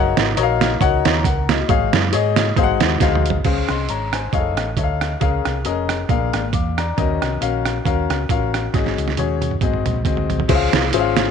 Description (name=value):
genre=uptempo gospel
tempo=136 BPM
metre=4/4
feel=swing 55% on 8ths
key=Db major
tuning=A4 = 444 Hz
part: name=clear baby grand piano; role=accompaniment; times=0.0-11.3 s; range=Ab2 to D6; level=-20 LUFS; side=left 12 dB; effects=none
part: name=hollow-body short-scale fingered electric bass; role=bass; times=0.0-11.3 s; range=F1 to Ab2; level=-23 LUFS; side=right 1 dB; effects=none
part: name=trip hop sampler-style drum kit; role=drums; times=0.2-11.3 s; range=crash cymbal, hi-hat, kick drum, rim click, snare drum, toms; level=-20 LUFS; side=right 6 dB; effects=none
room=light reverb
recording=1960s-style stereo with parts hard left and right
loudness=-16 LUFS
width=side -7 dB against mid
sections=0.0-3.4 A section; 3.4-10.5 B section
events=drum fill 3.0-3.4, 8.7-10.5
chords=0.0 Ebm7/Gb; 1.7 Db/Ab; 2.6 Ab7; 3.4 Dbmaj7; 4.3 Faug7; 5.2 Bbm7; 6.1 Bb7; 7.0 Ebm7; 8.7 Ab7sus4; 9.6 Ab7; 10.5 Dbmaj7